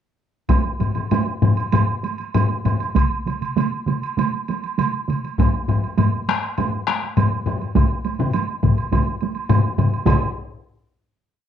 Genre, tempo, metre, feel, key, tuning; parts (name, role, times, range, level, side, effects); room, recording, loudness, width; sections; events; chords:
japanese traditional, taiko drum ensemble; 97-108 BPM; 4/4; straight
solo taiko drums; percussion; 0.5-10.3 s; -21 LUFS; equal
taiko ensemble; percussion; 0.5-10.3 s; -24 LUFS; right 7 dB
taiko ensemble; percussion; 0.5-10.6 s; -20 LUFS; left 4 dB
woodblock; percussion; 0.5-10.3 s; -27 LUFS; right 7 dB
taiko ensemble; percussion; 2.9-10.6 s; -25 LUFS; right 2 dB
wet studio reverb, RT60 0.6 s; home recording on cassette; -18 LUFS; side -9 dB against mid
0.5-10.1 A section; 10.1-11.5 final hit
speeding up 0.5-11.5